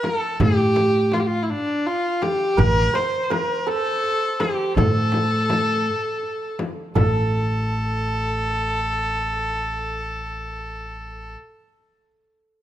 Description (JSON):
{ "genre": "Persian modal ensemble", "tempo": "55 BPM (dotted quarters)", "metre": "6/8", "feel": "straight", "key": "A dastgah shur", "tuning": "A4 = 440 Hz", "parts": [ { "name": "bright kamancheh", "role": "melody", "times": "0.0-11.4 s", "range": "D4 to C5", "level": "-23 LUFS", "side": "equal", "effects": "none" }, { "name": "frame drum", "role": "percussion", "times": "0.0-7.3 s", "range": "none", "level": "-28 LUFS", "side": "left 3 dB", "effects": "none" }, { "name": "tombak", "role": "percussion", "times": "0.0-7.3 s", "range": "none", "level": "-25 LUFS", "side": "right 2 dB", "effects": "none" }, { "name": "upright bass", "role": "bass", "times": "0.4-11.3 s", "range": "A1 to A2", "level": "-23 LUFS", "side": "equal", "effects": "none" }, { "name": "santur", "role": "second line", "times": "2.6-11.3 s", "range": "A4 to C5", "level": "-28 LUFS", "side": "right 3 dB", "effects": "none" } ], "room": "light reverb", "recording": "none", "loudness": "-19 LUFS", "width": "side -12 dB against mid", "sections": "0.0-7.0 A section; 7.0-11.3 B section", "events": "none", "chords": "none" }